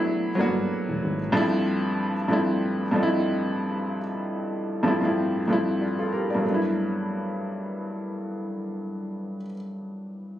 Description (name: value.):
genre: R&B.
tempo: 94 BPM.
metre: 4/4.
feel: swing 54% on 16ths.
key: unclear.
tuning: A4 = 440 Hz.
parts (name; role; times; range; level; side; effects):
clear concert grand piano; accompaniment; 0.0-10.4 s; G2 to D5; -24 LUFS; equal; none.
rubbery square bass; bass; 0.4-1.3 s; E1 to Ab1; -28 LUFS; equal; none.
room: moderate small room reverb, RT60 0.5 s.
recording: recorded on a phone in the room, studio reverb, compression.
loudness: -24 LUFS.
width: side -12 dB against mid.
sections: 0.0-6.4 A section; 6.4-9.0 B section.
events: none.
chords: 0.0 Gmaj9; 1.3 G13sus4; 6.4 Gmaj9.